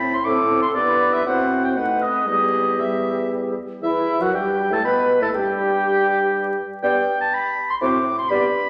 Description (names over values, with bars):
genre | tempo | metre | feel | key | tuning
quick classical-period movement for wind quintet | 120 BPM | 3/4 | straight | E minor | A4 = 442 Hz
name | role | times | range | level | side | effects
warm oboe | second line | 0.0-8.7 s | D5 to D6 | -23 LUFS | equal | none
mellow French horn | accompaniment | 0.0-8.5 s | E3 to C4 | -29 LUFS | equal | none
mellow clarinet | accompaniment | 0.0-8.5 s | B3 to B4 | -30 LUFS | equal | none
mellow bassoon | bass | 0.0-8.7 s | E2 to B2 | -30 LUFS | equal | none
mellow concert flute | melody | 0.3-8.5 s | E4 to D5 | -27 LUFS | equal | none
room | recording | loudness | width
wet scoring stage reverb, RT60 1.6 s | vinyl crackle | -20 LUFS | mono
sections
0.0-3.8 A section; 3.8-8.7 A section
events
none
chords
0.0 Am; 0.8 Em/G; 1.3 F#dim/A; 1.8 B7; 2.3 Em; 4.8 Asus2; 5.3 N.C.; 6.8 G; 7.8 F#dim/A